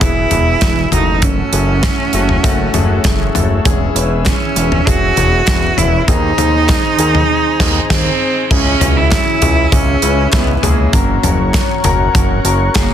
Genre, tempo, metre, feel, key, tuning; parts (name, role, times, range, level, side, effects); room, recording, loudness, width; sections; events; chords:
piano-driven pop; 99 BPM; 4/4; straight; C# minor; A4 = 441 Hz
clear cello; melody; 0.0-12.9 s; A#3 to F#4; -16 LUFS; right 4 dB; plate reverb
warm baby grand piano; accompaniment; 0.0-12.9 s; C#3 to C#5; -19 LUFS; left 5 dB; plate reverb
lush unison pad; sustained chords; 0.0-12.9 s; A#4 to E6; -26 LUFS; equal; chorus, plate reverb
fat analog bass; bass; 0.0-12.9 s; E1 to D#2; -16 LUFS; equal
modern studio drum kit; drums; 0.0-12.9 s; crash cymbal, hi-hat, kick drum, snare drum, toms; -15 LUFS; equal
group handclap; percussion; 4.3-12.9 s; -30 LUFS; left 3 dB
light reverb; dense, heavily limited modern master; -11 LUFS; side -9 dB against mid
0.0-8.5 A section; 8.5-12.9 B section
band accent 7.3-8.5
0.0 E; 0.9 F#m7; 3.7 C#m/E; 6.1 G#/D#; 8.5 C#m; 10.9 F#